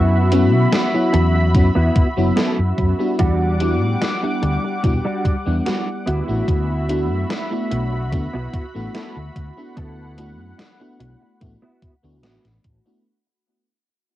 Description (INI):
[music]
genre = vaporwave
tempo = 73 BPM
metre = 4/4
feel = straight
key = D major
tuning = A4 = 439 Hz
[part]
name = lush unison pad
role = sustained chords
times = 0.0-13.0 s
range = G3 to D6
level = -26 LUFS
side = right 1 dB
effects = chorus
[part]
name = mellow electric guitar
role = riff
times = 0.0-12.7 s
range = G3 to A4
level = -25 LUFS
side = right 1 dB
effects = ensemble chorus, tape echo
[part]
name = fretless electric bass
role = bass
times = 0.0-12.8 s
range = E1 to B2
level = -19 LUFS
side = equal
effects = ensemble chorus
[part]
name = FM electric piano with soft pad layer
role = accompaniment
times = 0.3-13.0 s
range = F#3 to F#5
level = -22 LUFS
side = left 1 dB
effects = analog chorus, tape echo
[part]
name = gated 80s digital drum machine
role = drums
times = 0.3-12.8 s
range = hi-hat, snare drum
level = -24 LUFS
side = left 1 dB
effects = gated reverb, gated reverb snare, overdrive, small room ambience, cassette tape
[part]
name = electronic kick drum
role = drums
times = 1.5-12.8 s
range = none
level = -19 LUFS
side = equal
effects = small room ambience, cassette tape
[sound]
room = light reverb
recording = home recording on cassette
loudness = -16 LUFS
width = side -14 dB against mid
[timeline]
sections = 0.0-13.1 A section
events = fade-out 0.0-13.1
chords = 0.0 F#7sus4; 3.2 Em9; 6.1 D69